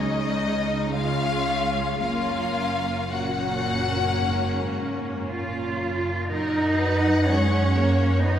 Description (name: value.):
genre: classical, slow romantic movement for string orchestra.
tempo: 53-63 BPM.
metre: 4/4.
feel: rubato.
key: F# major.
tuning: A4 = 440 Hz.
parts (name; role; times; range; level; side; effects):
warm studio violin section; melody; 0.0-8.4 s; D#5 to F#5; -28 LUFS; left 4 dB; none.
warm symphonic violin section; second line; 0.0-8.4 s; D#4 to C#5; -31 LUFS; left 1 dB; none.
warm symphonic viola section; accompaniment; 0.0-8.4 s; F#3 to C#4; -29 LUFS; equal; none.
rich symphonic double bass section; bass; 0.0-8.4 s; F#1 to F#2; -27 LUFS; right 2 dB; none.
warm symphonic cello section; bass; 0.0-8.4 s; F#2 to E#4; -27 LUFS; right 1 dB; none.
room: wet concert hall reverb, RT60 1.9 s.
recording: heard from further back in the room.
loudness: -22 LUFS.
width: side -10 dB against mid.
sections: 0.0-6.3 A section; 6.3-8.4 B section.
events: none.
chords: 0.0 C#; 2.0 F#.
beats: 0.93 | 2.00 3.12 4.20 5.26 | 6.31 7.27 8.23.